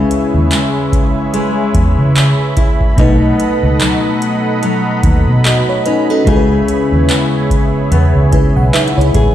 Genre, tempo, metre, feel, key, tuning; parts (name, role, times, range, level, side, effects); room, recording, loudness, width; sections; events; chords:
contemporary R&B; 73 BPM; 4/4; swing 58% on 16ths; C# minor; A4 = 441 Hz
FM electric piano with soft pad layer; accompaniment; 0.0-9.3 s; B2 to G#5; -16 LUFS; equal; chorus
warm analog pad; sustained chords; 0.0-9.3 s; G#4 to B5; -20 LUFS; right 2 dB; chorus
nylon-string guitar; arpeggios; 0.0-9.3 s; B2 to G#4; -18 LUFS; left 2 dB; ping-pong delay
vintage muted fingered electric bass; bass; 0.0-9.3 s; A1 to C#3; -12 LUFS; equal
booming analog drum machine; drums; 0.1-9.3 s; handclaps, hi-hat, kick drum; -15 LUFS; equal; overdrive
light reverb, digital ambience; played on a big sound system in a bare room, stone room reverb; -10 LUFS; side -12 dB against mid
0.0-9.3 A section
FM electric piano fill 7.9-9.3
0.0 C#m7; 3.0 B7; 6.3 C#m7